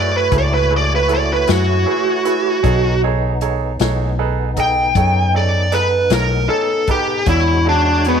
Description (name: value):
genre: slow blues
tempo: 52 BPM (dotted quarters)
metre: 12/8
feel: straight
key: unclear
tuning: A4 = 440 Hz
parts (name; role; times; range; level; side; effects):
- smooth overdriven lead guitar; melody; 0.0-8.2 s; B3 to G5; -16 LUFS; equal; none
- bright upright piano; accompaniment; 0.0-8.2 s; D4 to D#5; -23 LUFS; right 13 dB; none
- tonewheel organ; sustained chords; 0.0-8.2 s; G#3 to C#5; -25 LUFS; left 1 dB; slow rotary speaker, overdrive, chorus vibrato
- vintage muted fingered electric bass; bass; 0.0-8.2 s; B1 to F#2; -18 LUFS; left 1 dB; none
- swinging big-band drum kit; drums; 0.3-8.2 s; hi-hat, kick drum, snare drum; -24 LUFS; left 5 dB; none
room: light reverb, studio ambience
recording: 1960s-style stereo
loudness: -14 LUFS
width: side -7 dB against mid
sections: 0.0-8.2 A section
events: lead electric guitar solo 0.0-8.2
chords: 0.0 F#m7; 2.6 B13; 7.3 E13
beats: 0.32 1.48 | 2.64 3.80 4.96 6.12 | 7.27